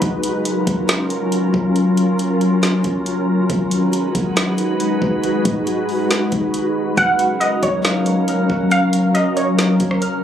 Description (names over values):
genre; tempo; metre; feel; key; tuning
hip hop, atmospheric cloud-rap; 138 BPM; 4/4; half-time; F# major; A4 = 440 Hz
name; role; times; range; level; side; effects
glassy FM pad; sustained chords; 0.0-10.2 s; F#3 to B4; -17 LUFS; equal; ensemble chorus, built-in reverb, sidechain pumping
clean 808-style bass; bass; 0.0-10.2 s; F#1 to G#2; -30 LUFS; equal; none
smooth R&B drum kit; drums; 0.0-10.1 s; hi-hat, kick drum, rim click, snare drum; -22 LUFS; equal; none
warbly dusty pluck; melody; 7.0-10.0 s; C#5 to F#5; -19 LUFS; right 1 dB; chorus, tape echo
Celtic harp; arpeggios; 7.0-10.2 s; E#4 to E#6; -26 LUFS; left 2 dB; tape echo
room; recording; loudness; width
light reverb; recorded on a phone in the room, club reverb, compression; -15 LUFS; side -9 dB against mid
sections
0.0-7.0 A section; 7.0-10.2 B section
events
none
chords
0.0 F#maj7; 3.5 G#m7; 7.0 F#maj7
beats
| 0.02 0.45 0.89 1.32 | 1.76 2.19 2.63 3.06 | 3.50 3.93 4.37 4.80 | 5.24 5.67 6.11 6.54 | 6.97 7.41 7.84 8.28 | 8.71 9.15 9.58 10.02